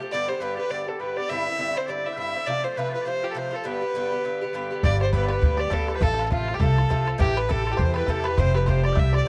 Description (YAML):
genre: celtic folk, Celtic reel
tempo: 204 BPM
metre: 4/4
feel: swing 57% on 8ths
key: G mixolydian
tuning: A4 = 441 Hz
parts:
  - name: Irish bouzouki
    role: accompaniment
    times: 0.0-9.3 s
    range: G2 to G4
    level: -32 LUFS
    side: equal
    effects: none
  - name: warm fiddle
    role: melody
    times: 0.1-9.3 s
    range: F4 to E5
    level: -29 LUFS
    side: equal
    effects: none
  - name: loud bright bagpipes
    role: second line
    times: 0.1-9.3 s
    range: F4 to G5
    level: -38 LUFS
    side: equal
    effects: tape echo
  - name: bluegrass banjo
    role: second line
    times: 4.8-9.3 s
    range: F4 to E5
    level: -37 LUFS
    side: equal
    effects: none
  - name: upright bass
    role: bass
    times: 4.8-9.2 s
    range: F1 to E2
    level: -26 LUFS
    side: equal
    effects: none
  - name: bodhran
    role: percussion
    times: 4.8-9.2 s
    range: none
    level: -27 LUFS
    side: equal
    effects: none
room: light reverb, small room ambience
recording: cassette tape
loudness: -24 LUFS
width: mono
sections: 0.0-4.8 A section; 4.8-9.3 A section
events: none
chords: 0.1 G; 1.3 Cadd9/G; 2.5 F; 3.7 G; 6.0 F/A; 7.2 Am7; 8.4 Fadd9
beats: | 0.12 0.41 0.71 1.00 | 1.30 1.59 1.89 2.18 | 2.48 2.77 3.07 3.36 | 3.66 3.95 4.25 4.54 | 4.84 5.13 5.43 5.72 | 6.02 6.31 6.61 6.90 | 7.20 7.49 7.79 8.08 | 8.38 8.67 8.97 9.26